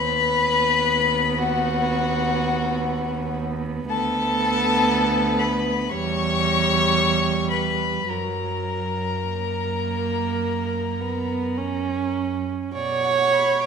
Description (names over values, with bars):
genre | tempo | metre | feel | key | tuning
classical, slow romantic movement for string quartet | 51-61 BPM | 4/4 | rubato | unclear | A4 = 440 Hz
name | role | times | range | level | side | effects
dark violin | melody | 0.0-13.7 s | F#5 to C#6 | -25 LUFS | left 7 dB | none
warm violin | second line | 0.0-13.7 s | F#4 to D6 | -26 LUFS | left 3 dB | none
warm viola | accompaniment | 0.0-13.7 s | F#3 to C#5 | -25 LUFS | right 4 dB | none
dark cello | bass | 0.0-13.7 s | D2 to B2 | -27 LUFS | right 5 dB | none
room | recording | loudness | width
moderate scoring stage reverb, RT60 1.6 s | minimal, uncompressed stereo recording | -20 LUFS | side -6 dB against mid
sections
0.0-12.7 A section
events
none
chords
0.0 B/D#; 3.9 Bm/D; 5.9 Em; 8.1 F#; 12.7 Bm